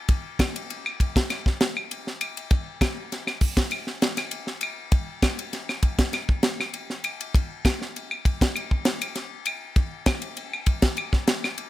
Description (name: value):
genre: afrobeat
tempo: 99 BPM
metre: 4/4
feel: straight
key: none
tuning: none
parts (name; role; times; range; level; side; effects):
- tight funk drum kit; drums; 0.1-11.7 s; hi-hat, kick drum, ride cymbal, snare drum; -24 LUFS; equal; none
- claves; percussion; 0.4-11.6 s; none; -31 LUFS; left 2 dB; none
room: light reverb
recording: none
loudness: -23 LUFS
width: side -15 dB against mid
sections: 0.0-11.7 A section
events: none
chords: none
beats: | 0.09 0.70 1.30 1.91 | 2.51 3.12 3.72 4.33 | 4.93 5.53 6.14 6.74 | 7.34 7.95 8.55 9.15 | 9.76 10.36 10.96 11.57